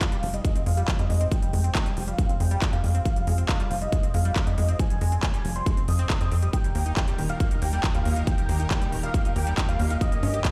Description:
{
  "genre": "uplifting trance",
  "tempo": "138 BPM",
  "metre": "4/4",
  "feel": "straight",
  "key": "F minor",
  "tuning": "A4 = 440 Hz",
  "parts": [
    { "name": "dense compressed supersaw", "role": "melody", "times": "0.0-10.5 s", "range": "Eb5 to Eb6", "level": "-35 LUFS", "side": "equal", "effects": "sidechain pumping, low-pass filter, digital delay" },
    { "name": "unison pluck", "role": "arpeggios", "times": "0.0-10.5 s", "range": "Eb3 to G4", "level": "-37 LUFS", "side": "equal", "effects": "sidechain pumping, digital delay" },
    { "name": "big-room dance drum kit", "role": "drums", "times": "0.0-10.5 s", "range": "handclaps, hi-hat", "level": "-36 LUFS", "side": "equal", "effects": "none" },
    { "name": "electronic kick drum", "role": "drums", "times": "0.0-10.5 s", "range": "none", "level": "-28 LUFS", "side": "equal", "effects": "none" },
    { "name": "tight sequencer bass", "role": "bass", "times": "0.2-10.4 s", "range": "Eb1 to G2", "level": "-27 LUFS", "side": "equal", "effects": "sidechain pumping" },
    { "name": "clear symphonic string section", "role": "sustained chords", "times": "6.5-10.5 s", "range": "Eb3 to Bb4", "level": "-39 LUFS", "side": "equal", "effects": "sidechain pumping" }
  ],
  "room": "digital ambience",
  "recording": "played on a big sound system in a bare room, large studio reverb",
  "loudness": "-25 LUFS",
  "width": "mono",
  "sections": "0.0-10.5 A section",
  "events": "none",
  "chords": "0.0 Fmadd9; 6.5 Eb; 10.0 Gdim",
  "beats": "0.01 0.45 0.88 | 1.32 1.75 2.19 2.62 | 3.06 3.49 3.92 4.36 | 4.79 5.23 5.66 6.10 | 6.53 6.97 7.40 7.84 | 8.27 8.71 9.14 9.58 | 10.01 10.45"
}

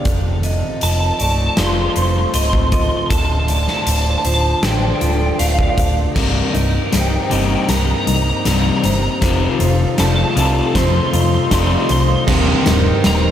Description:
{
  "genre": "post-rock",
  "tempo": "78 BPM",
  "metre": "4/4",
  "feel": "straight",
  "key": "C dorian",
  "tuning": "A4 = 440 Hz",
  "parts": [
    { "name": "warm studio string section", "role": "sustained chords", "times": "0.0-13.3 s", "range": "D3 to G5", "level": "-28 LUFS", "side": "right 1 dB", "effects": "none" },
    { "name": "electric guitar through a small old amp", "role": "arpeggios", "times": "0.0-13.3 s", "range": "C2 to F4", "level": "-25 LUFS", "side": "left 1 dB", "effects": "warbly pitch drift, analog delay" },
    { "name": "vibraphone with hard mallets", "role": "arpeggios", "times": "0.0-13.3 s", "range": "A4 to Eb5", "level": "-26 LUFS", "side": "right 4 dB", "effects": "analog delay" },
    { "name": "picked electric bass", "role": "bass", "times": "0.1-13.3 s", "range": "C1 to F2", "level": "-18 LUFS", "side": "equal", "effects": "none" },
    { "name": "huge arena drum kit", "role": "drums", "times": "0.1-13.2 s", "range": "crash cymbal, hi-hat, kick drum, snare drum", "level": "-20 LUFS", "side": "equal", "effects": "none" },
    { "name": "twelve-string electric guitar", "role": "melody", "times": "0.8-13.3 s", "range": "F5 to C6", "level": "-22 LUFS", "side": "equal", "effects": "ensemble chorus, slapback echo, analog delay" },
    { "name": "crunchy overdriven guitar", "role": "riff", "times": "6.2-13.3 s", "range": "C2 to F3", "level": "-19 LUFS", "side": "left 4 dB", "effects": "slapback echo" },
    { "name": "overdriven semi-hollow guitar", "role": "riff", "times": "12.3-13.3 s", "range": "C2 to C3", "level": "-20 LUFS", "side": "right 6 dB", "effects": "tremolo" }
  ],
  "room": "moderate lush hall reverb, RT60 2.5 s",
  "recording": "big arena sound",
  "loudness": "-14 LUFS",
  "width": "side -10 dB against mid",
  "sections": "0.0-6.2 A section; 6.2-13.3 B section",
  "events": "build-up 6.2-13.3; drum fill 6.2-13.3",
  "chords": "0.1 F7; 3.1 Dm7; 6.2 Cm7; 9.2 F7; 12.3 Cm7/Eb",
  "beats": "| 0.06 0.82 1.58 2.34 | 3.11 3.87 4.63 5.40 | 6.16 6.92 7.69 8.45 | 9.22 9.98 10.75 11.51 | 12.28 13.04"
}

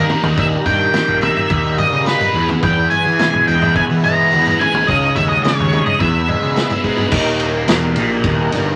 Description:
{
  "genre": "psychedelic rock",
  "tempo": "107 BPM",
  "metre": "4/4",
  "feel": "straight",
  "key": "Eb phrygian dominant",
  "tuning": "A4 = 440 Hz",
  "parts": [
    { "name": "octave-fuzz lead guitar", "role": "melody", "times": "0.0-6.8 s", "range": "Bb4 to Bb5", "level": "-19 LUFS", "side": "equal", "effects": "distortion" },
    { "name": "tonewheel organ", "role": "sustained chords", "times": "0.0-8.8 s", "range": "Eb3 to Db5", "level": "-26 LUFS", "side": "equal", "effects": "slow rotary speaker, overdrive, chorus vibrato" },
    { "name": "thick fuzz guitar", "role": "riff", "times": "0.0-8.8 s", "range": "Eb2 to Ab4", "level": "-22 LUFS", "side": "equal", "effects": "distortion, phaser" },
    { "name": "fuzz picked electric bass", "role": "bass", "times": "0.0-8.8 s", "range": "Eb1 to E3", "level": "-23 LUFS", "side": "equal", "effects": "overdrive" },
    { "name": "vintage drum kit", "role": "drums", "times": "0.1-8.7 s", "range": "crash cymbal, kick drum, ride cymbal, snare drum, toms", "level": "-23 LUFS", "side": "equal", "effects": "none" },
    { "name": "tambourine", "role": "percussion", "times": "0.1-7.8 s", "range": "none", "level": "-43 LUFS", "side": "equal", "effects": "none" }
  ],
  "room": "wet small room reverb, RT60 0.5 s",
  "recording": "vinyl crackle",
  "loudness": "-15 LUFS",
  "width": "mono",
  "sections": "0.0-7.1 A section; 7.1-8.8 B section",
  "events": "drum fill 6.8",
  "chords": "0.0 Eb; 2.3 E; 4.9 Dbsus2; 6.0 E; 7.1 Eb",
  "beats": "| 0.38 0.94 1.50 2.07 | 2.63 3.19 3.75 4.32 | 4.88 5.44 6.00 6.56 | 7.12 7.68 8.24"
}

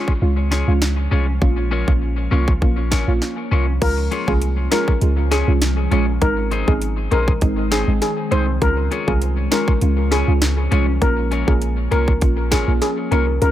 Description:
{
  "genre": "dancehall",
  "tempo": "100 BPM",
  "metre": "4/4",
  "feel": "straight",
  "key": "Db major",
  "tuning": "A4 = 443 Hz",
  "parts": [
    { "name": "deep mellow chord stab", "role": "accompaniment", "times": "0.0-13.5 s", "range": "Ab3 to F4", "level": "-25 LUFS", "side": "right 4 dB", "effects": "chorus, tape echo" },
    { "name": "glassy FM pad", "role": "sustained chords", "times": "0.0-13.5 s", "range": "Eb3 to Db4", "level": "-29 LUFS", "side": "left 3 dB", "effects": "ensemble chorus, built-in reverb, sidechain pumping" },
    { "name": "electric guitar at the edge of break-up", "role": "arpeggios", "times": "0.0-13.3 s", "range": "C4 to Db5", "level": "-27 LUFS", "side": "left 5 dB", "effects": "tape echo" },
    { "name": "island pop drum kit", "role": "drums", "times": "0.1-13.5 s", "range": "crash cymbal, hi-hat, kick drum, snare drum", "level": "-20 LUFS", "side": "equal", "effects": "overdrive" },
    { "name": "clean 808-style bass", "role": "bass", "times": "0.2-13.5 s", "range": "Ab1 to Db2", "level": "-19 LUFS", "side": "equal", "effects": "none" },
    { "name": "steel pan", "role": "melody", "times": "3.8-13.5 s", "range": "Ab4 to C5", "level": "-23 LUFS", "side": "left 2 dB", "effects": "tape echo" }
  ],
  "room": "little or no reverb",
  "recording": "echo-heavy mix",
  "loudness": "-16 LUFS",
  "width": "side -12 dB against mid",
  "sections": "0.0-3.8 A section; 3.8-13.5 B section",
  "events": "none",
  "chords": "0.0 Db; 1.4 Bbm; 3.8 Db; 6.2 Ab; 8.6 Db; 11.0 Bbm",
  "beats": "0.22 0.82 | 1.42 2.02 2.62 3.22 | 3.82 4.42 5.02 5.62 | 6.22 6.82 7.42 8.02 | 8.62 9.22 9.82 10.42 | 11.02 11.62 12.22 12.82 | 13.42"
}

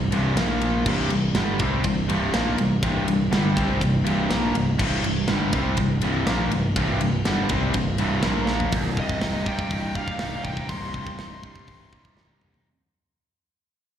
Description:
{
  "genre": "heavy metal",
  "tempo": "122 BPM",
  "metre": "4/4",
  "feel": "straight",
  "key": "C minor",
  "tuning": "A4 = 441 Hz",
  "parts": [
    { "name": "distorted electric guitar", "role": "riff", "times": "0.0-12.7 s", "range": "C2 to Eb4", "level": "-28 LUFS", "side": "left 7 dB", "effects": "overdrive, slapback echo" },
    { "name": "heavy high-gain guitar", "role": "riff", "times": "0.0-12.7 s", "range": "C2 to Eb4", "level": "-28 LUFS", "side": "right 8 dB", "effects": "distortion" },
    { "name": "overdriven electric guitar", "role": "riff", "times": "0.0-8.7 s", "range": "C2 to C4", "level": "-29 LUFS", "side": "equal", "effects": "slapback echo" },
    { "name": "growling picked electric bass", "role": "bass", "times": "0.0-12.6 s", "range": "C1 to C2", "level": "-26 LUFS", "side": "equal", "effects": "overdrive" },
    { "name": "tight metal drum kit", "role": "drums", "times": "0.1-12.7 s", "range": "crash cymbal, hi-hat, kick drum, ride cymbal, snare drum, toms", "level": "-27 LUFS", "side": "equal", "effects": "none" },
    { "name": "high-gain lead guitar", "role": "melody", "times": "9.0-12.4 s", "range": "Eb5 to C6", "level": "-34 LUFS", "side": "equal", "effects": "distortion, digital delay" }
  ],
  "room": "small room ambience",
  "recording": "live gig heard through the venue's PA, recital hall reverb",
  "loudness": "-21 LUFS",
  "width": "side -9 dB against mid",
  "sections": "0.0-8.7 A section; 8.7-12.7 B section",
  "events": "drum fill 8.5, 12.2-12.7; fade-out 8.7-12.7",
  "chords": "0.4 Bb5; 0.9 C5; 8.2 Bb5; 8.7 Cm",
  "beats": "0.37 | 0.86 1.35 1.84 2.34 | 2.83 3.32 3.81 4.30 | 4.80 5.29 5.78 6.27 | 6.76 7.25 7.75 8.24 | 8.73 9.22 9.71 10.20 | 10.70 11.19 11.68 12.17"
}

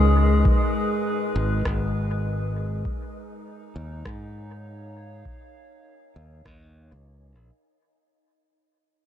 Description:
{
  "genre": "ambient dub",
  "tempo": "100 BPM",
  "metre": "4/4",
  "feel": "swing 54% on 16ths",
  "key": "unclear",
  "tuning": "A4 = 440 Hz",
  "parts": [
    { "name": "warbly tape-like pad", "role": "sustained chords", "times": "0.0-7.7 s", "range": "Ab3 to Ab5", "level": "-27 LUFS", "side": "equal", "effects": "chorus, built-in reverb" },
    { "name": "modern bright fingered electric bass", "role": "bass", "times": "0.0-7.5 s", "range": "Ab1 to Ab2", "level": "-24 LUFS", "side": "equal", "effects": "none" },
    { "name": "wind-like tuned noise texture", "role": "texture", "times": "0.0-7.7 s", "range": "Eb4 to Eb5", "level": "-36 LUFS", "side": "left 2 dB", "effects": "built-in reverb" },
    { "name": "electronic kick drum", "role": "drums", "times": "0.5-6.6 s", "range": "none", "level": "-24 LUFS", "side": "equal", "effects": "none" },
    { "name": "electronic rim click", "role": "drums", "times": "1.7-6.6 s", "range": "none", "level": "-39 LUFS", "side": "equal", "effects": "dub echo" }
  ],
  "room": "digital ambience",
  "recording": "dark, warm production",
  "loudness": "-21 LUFS",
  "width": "side -10 dB against mid",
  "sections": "0.0-7.7 A section",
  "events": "fade-out 0.0-7.7",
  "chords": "0.0 Abm; 2.9 Ebsus2",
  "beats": "| 0.45 1.05 1.65 2.25 | 2.85 3.45 4.05 4.65 | 5.25 5.85 6.45 7.05"
}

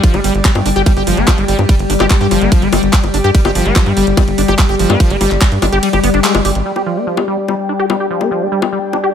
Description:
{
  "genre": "psychedelic trance",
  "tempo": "145 BPM",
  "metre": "4/4",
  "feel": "straight",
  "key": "unclear",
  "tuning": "A4 = 440 Hz",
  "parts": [
    { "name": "evolving wavetable pad", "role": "sustained chords", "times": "0.0-9.1 s", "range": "G3 to G4", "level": "-19 LUFS", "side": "left 5 dB", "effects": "chorus, built-in reverb, phaser, sidechain pumping" },
    { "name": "liquid acid bass", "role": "riff", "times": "0.0-9.1 s", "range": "F3 to G4", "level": "-18 LUFS", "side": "equal", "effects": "chorus, auto-pan, sidechain pumping, ping-pong delay" },
    { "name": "electronic kick drum", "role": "drums", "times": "0.0-5.5 s", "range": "none", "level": "-11 LUFS", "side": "right 1 dB", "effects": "overdrive, studio reverb" },
    { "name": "garage drum kit", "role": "drums", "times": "0.0-9.0 s", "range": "bongos, handclaps, hi-hat, ride cymbal", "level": "-19 LUFS", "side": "left 3 dB", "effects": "overdrive, studio reverb" },
    { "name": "airy breathy pad", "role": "texture", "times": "0.0-9.1 s", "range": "G4 to G5", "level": "-21 LUFS", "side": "left 1 dB", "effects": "chorus, sidechain pumping" },
    { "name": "tight sequencer bass", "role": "bass", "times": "0.1-6.6 s", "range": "G1 to G2", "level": "-16 LUFS", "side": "right 1 dB", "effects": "none" }
  ],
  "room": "light reverb, digital ambience",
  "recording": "none",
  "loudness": "-11 LUFS",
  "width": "side -8 dB against mid",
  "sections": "0.0-6.7 A section; 6.7-9.1 B section",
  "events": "drop 0.0-6.7; kick drops out 5.8-6.7; band accent 6.2",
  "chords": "0.0 G5",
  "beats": "| 0.04 0.45 0.86 1.28 | 1.69 2.10 2.52 2.93 | 3.35 3.76 4.17 4.59 | 5.00 5.42 5.83 6.24 | 6.66 7.07 7.48 7.90 | 8.31 8.72 9.14"
}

